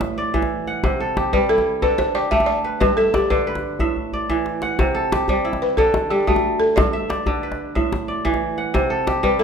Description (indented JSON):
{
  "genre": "west african traditional, West African string and xylophone music",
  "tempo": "121 BPM (dotted quarters)",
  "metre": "12/8",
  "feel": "straight",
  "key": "G major",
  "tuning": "A4 = 441 Hz",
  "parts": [
    { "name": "kora", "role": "arpeggios", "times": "0.0-9.4 s", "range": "G2 to F#5", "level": "-21 LUFS", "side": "right 2 dB", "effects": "none" },
    { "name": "djembe", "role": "percussion", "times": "0.0-9.3 s", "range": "none", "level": "-24 LUFS", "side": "left 1 dB", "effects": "none" },
    { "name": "balafon", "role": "melody", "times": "1.3-9.4 s", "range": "F#4 to E5", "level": "-19 LUFS", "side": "left 1 dB", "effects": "none" }
  ],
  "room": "moderate recital hall reverb, RT60 1.4 s",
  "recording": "minimal, uncompressed stereo recording",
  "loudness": "-18 LUFS",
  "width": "side -6 dB against mid",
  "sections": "0.0-9.4 A section",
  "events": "drum fill 4.0-4.8",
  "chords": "0.0 A5; 0.8 C; 1.8 D5; 2.8 G; 3.8 A5; 4.8 C; 5.8 D; 6.8 G; 7.8 A5; 8.7 C5",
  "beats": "0.34 | 0.83 1.33 1.82 2.32 | 2.81 3.31 3.80 4.30 | 4.79 5.29 5.78 6.27 | 6.77 7.26 7.75 8.25 | 8.74 9.23"
}